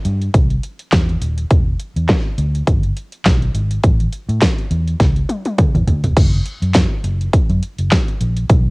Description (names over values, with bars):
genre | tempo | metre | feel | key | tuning
early-eighties boogie funk | 103 BPM | 4/4 | swing 56% on 16ths | E minor | A4 = 438 Hz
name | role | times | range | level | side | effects
dubstep drum kit | drums | 0.0-8.6 s | crash cymbal, handclaps, hi-hat, kick drum, snare drum, toms | -14 LUFS | equal | cassette tape
vintage muted fingered electric bass | bass | 0.1-8.7 s | D#1 to A2 | -17 LUFS | equal | none
room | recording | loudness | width
little or no reverb | home recording on cassette | -14 LUFS | side -29 dB against mid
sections
0.0-6.2 A section; 6.2-8.7 B section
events
drum fill 5.0-6.2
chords
none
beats
0.34 0.92 | 1.51 2.09 2.67 3.25 | 3.84 4.42 5.00 5.58 | 6.17 6.75 7.33 7.91 | 8.50